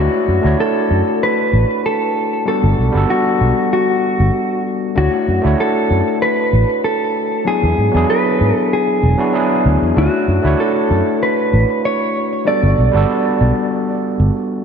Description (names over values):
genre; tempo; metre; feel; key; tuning
sunset chillout; 96 BPM; 4/4; straight; D major; A4 = 440 Hz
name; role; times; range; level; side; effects
mellow electric guitar; melody; 0.0-14.3 s; F#4 to D5; -18 LUFS; right 1 dB; ping-pong delay
overdriven tine electric piano; accompaniment; 0.0-14.6 s; F#3 to C#5; -18 LUFS; moving between left 4 dB and right 3 dB; auto-pan, ping-pong delay
sustaining fretless electric bass; bass; 0.0-14.3 s; E1 to G#2; -14 LUFS; equal; wide subtle chorus
room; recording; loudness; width
wet lush hall reverb, RT60 2.5 s; dreamy mix soaked in reverb, nothing above 7.6 kHz; -13 LUFS; side -6 dB against mid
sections
0.0-14.6 A section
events
none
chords
0.0 Dmaj7; 2.5 Gmaj9; 5.0 Dmaj7; 7.5 E7; 10.0 Dmaj7; 12.5 Gmaj9